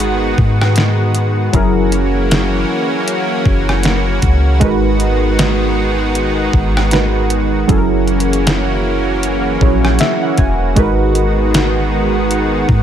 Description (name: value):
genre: contemporary R&B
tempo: 78 BPM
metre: 4/4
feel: swing 58% on 16ths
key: G# minor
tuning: A4 = 440 Hz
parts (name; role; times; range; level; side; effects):
- warm analog keys; accompaniment; 0.0-12.8 s; F#3 to G#5; -17 LUFS; right 1 dB; chorus
- lush unison pad; sustained chords; 0.0-12.8 s; D#3 to F#4; -18 LUFS; right 1 dB; chorus
- soft 808-style bass; bass; 0.0-12.8 s; E1 to G#2; -16 LUFS; equal; none
- detuned 8-bit digital drum machine; drums; 0.0-12.8 s; hi-hat, kick drum, rim click, snare drum; -16 LUFS; equal; overdrive
room: light reverb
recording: none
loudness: -12 LUFS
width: side -9 dB against mid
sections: 0.0-12.8 A section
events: synth keys fill 9.6-10.8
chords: 0.0 G#m7; 1.5 F#7; 4.6 G#m7; 7.7 F#7; 10.8 G#m7